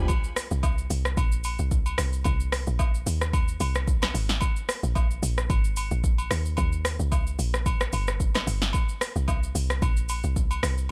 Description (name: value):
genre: amapiano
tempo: 111 BPM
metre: 4/4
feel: swing 55% on 16ths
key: unclear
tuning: A4 = 440 Hz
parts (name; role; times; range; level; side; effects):
- deep log drum bass; bass; 0.0-10.9 s; G1 to Eb2; -29 LUFS; equal; none
- deep house drum kit; drums; 0.1-10.9 s; hi-hat, kick drum, rim click, shaker, snare drum; -28 LUFS; equal; none
- agogo bells and woodblock; percussion; 0.1-10.6 s; none; -38 LUFS; equal; none
room: digital ambience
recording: none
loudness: -26 LUFS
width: mono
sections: 0.1-10.9 A section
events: drop 0.1-10.9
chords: none